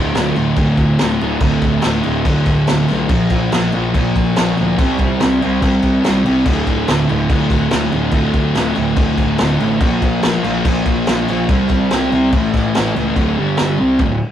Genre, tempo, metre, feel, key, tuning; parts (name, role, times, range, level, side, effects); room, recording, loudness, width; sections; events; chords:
garage rock duo or trio; 143 BPM; 4/4; straight; A4 = 440 Hz
thick fuzz guitar; riff; 0.0-14.2 s; D2 to C4; -15 LUFS; equal; distortion
fuzz picked electric bass; bass; 0.0-14.2 s; D1 to D2; -22 LUFS; equal; overdrive
vintage drum kit; drums; 0.1-14.1 s; crash cymbal, kick drum, snare drum; -18 LUFS; equal
moderate studio reverb, RT60 0.6 s; rough rehearsal-room recording, warm saturation; -13 LUFS; side -10 dB against mid
0.0-13.2 A section; 13.2-14.3 B section
0.0 D5; 3.1 Bb5; 4.8 C5; 6.5 D5; 9.8 Bb5; 11.5 C5; 12.3 A; 13.2 D5; 13.4 G5; 13.8 D5